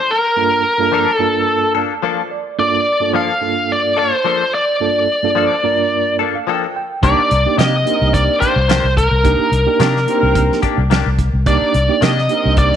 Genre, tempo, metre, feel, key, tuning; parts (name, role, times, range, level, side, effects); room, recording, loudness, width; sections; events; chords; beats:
straight-eighth soul blues; 108 BPM; 4/4; swing 54% on 16ths; G minor; A4 = 440 Hz
biting lead guitar; melody; 0.0-12.8 s; Bb4 to F5; -15 LUFS; left 1 dB; overdrive
reed electric piano; accompaniment; 0.4-12.8 s; G2 to A5; -21 LUFS; right 11 dB; fast tremolo
direct-recorded clean electric guitar; stabs; 0.9-12.2 s; Eb3 to A4; -21 LUFS; left 11 dB; ensemble chorus
warm horn section; sustained chords; 7.0-12.8 s; C4 to Bb4; -26 LUFS; equal
vintage muted fingered electric bass; bass; 7.0-12.7 s; C2 to C3; -16 LUFS; left 1 dB
warm soul drum kit; drums; 7.0-12.8 s; hi-hat, kick drum, snare drum; -18 LUFS; right 2 dB
moderate echo chamber reverb, RT60 1.5 s, studio reverb; 1960s-style stereo with parts hard left and right; -13 LUFS; side -9 dB against mid
0.0-12.8 A section
reed electric piano fill 1.5-2.6, 5.9-7.0
0.0 Gm9; 7.0 Cm9
| 0.37 0.92 1.48 2.03 | 2.59 3.14 3.70 4.25 | 4.81 5.36 5.92 6.47 | 7.03 7.58 8.14 8.69 | 9.24 9.80 10.35 10.91 | 11.46 12.02 12.57